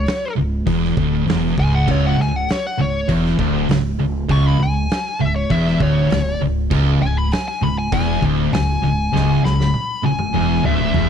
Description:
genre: stoner and doom metal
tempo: 99 BPM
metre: 4/4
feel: straight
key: C# minor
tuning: A4 = 442 Hz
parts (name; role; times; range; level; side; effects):
- fuzz lead guitar; melody; 0.0-11.1 s; C#5 to C#6; -24 LUFS; left 3 dB; wah, distortion, slapback echo
- upright bass; bass; 0.0-11.1 s; C#1 to E1; -22 LUFS; equal; overdrive
- oversized low-tuned drum kit; drums; 0.1-11.1 s; crash cymbal, hi-hat, kick drum, snare drum, toms; -25 LUFS; right 1 dB; none
- thick fuzz guitar; riff; 0.4-11.1 s; C#2 to E2; -20 LUFS; left 7 dB; distortion
- thick fuzz guitar; riff; 0.4-11.1 s; C#2 to E2; -22 LUFS; right 12 dB; distortion
- tight distorted guitar; riff; 1.9-11.1 s; C#2 to E2; -26 LUFS; right 2 dB; distortion
room: small room ambience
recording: dry, close 1970s-style studio recording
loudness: -16 LUFS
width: side -8 dB against mid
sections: 0.0-11.1 A section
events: lead electric guitar solo 0.0-11.1; drum fill 9.1-11.1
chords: 0.0 C#m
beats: 0.06 0.67 1.27 | 1.88 2.48 3.09 3.69 | 4.30 4.90 5.51 6.11 | 6.72 7.32 7.93 8.53 | 9.13 9.74 10.34 10.95

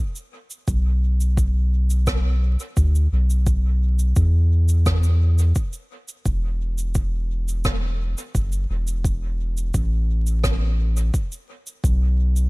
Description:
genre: ambient dub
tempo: 86 BPM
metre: 4/4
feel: straight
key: unclear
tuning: A4 = 445 Hz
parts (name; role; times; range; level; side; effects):
- cabasa and rim click; drums; 0.2-12.5 s; none; -31 LUFS; right 1 dB; dub echo
- soft dub sub bass; bass; 0.7-12.5 s; E1 to E2; -18 LUFS; equal; none
- electronic kick drum; drums; 0.7-12.0 s; none; -23 LUFS; equal; none
room: little or no reverb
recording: vinyl crackle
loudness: -19 LUFS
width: side -24 dB against mid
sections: 0.0-12.5 A section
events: none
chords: none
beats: | 0.68 1.37 2.07 2.77 | 3.47 4.17 4.86 5.56 | 6.26 6.96 7.65 8.35 | 9.05 9.75 10.44 11.14 | 11.84

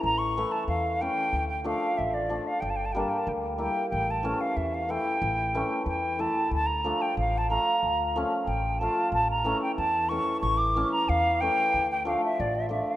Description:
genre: klezmer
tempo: 92 BPM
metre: 2/4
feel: straight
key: unclear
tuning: A4 = 440 Hz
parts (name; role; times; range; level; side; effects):
- mellow hollow concert flute; melody; 0.0-13.0 s; D5 to D6; -27 LUFS; equal; none
- hammered dulcimer; accompaniment; 0.0-13.0 s; E3 to F4; -30 LUFS; equal; none
- upright bass; bass; 0.0-12.8 s; G1 to E2; -32 LUFS; equal; none
room: moderate lush hall reverb, RT60 2.7 s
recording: rough home demo mix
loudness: -24 LUFS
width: side -14 dB against mid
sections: 0.0-3.9 A section; 3.9-13.0 A section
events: none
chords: 0.0 A; 1.3 Dm; 2.6 Gm; 3.9 A; 6.5 Dm; 9.1 A; 11.7 Dm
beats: | 0.04 0.69 | 1.33 1.98 | 2.63 3.28 | 3.93 4.58 | 5.23 5.88 | 6.53 7.18 | 7.83 8.48 | 9.13 9.78 | 10.43 11.08 | 11.74 12.39

